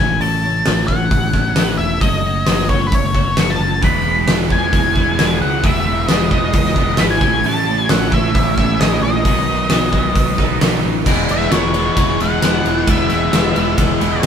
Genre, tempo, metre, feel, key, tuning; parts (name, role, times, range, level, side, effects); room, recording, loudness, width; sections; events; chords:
quiet-loud alternative rock; 133 BPM; 4/4; straight; E major; A4 = 441 Hz
octave-fuzz lead guitar; melody; 0.0-14.2 s; B4 to C#6; -20 LUFS; left 2 dB; distortion
twelve-string electric guitar; arpeggios; 0.0-14.3 s; A2 to F#4; -23 LUFS; left 2 dB; phaser
modern bright picked electric bass; bass; 0.0-14.3 s; E1 to C#2; -22 LUFS; right 1 dB
big rock drum kit; drums; 0.2-14.3 s; crash cymbal, hi-hat, kick drum, ride cymbal, snare drum; -17 LUFS; equal
thick fuzz guitar; riff; 3.8-14.3 s; A2 to E4; -22 LUFS; right 6 dB; distortion
fuzz guitar; riff; 11.1-14.3 s; E3 to E4; -21 LUFS; left 6 dB; distortion
moderate stone room reverb, RT60 1.2 s; band playing live in one room; -13 LUFS; side -8 dB against mid
0.0-11.1 A section; 11.1-14.3 B section
lead electric guitar solo 11.1-14.3
0.0 A; 2.0 F#m; 3.8 E; 7.2 A; 9.3 B; 11.1 E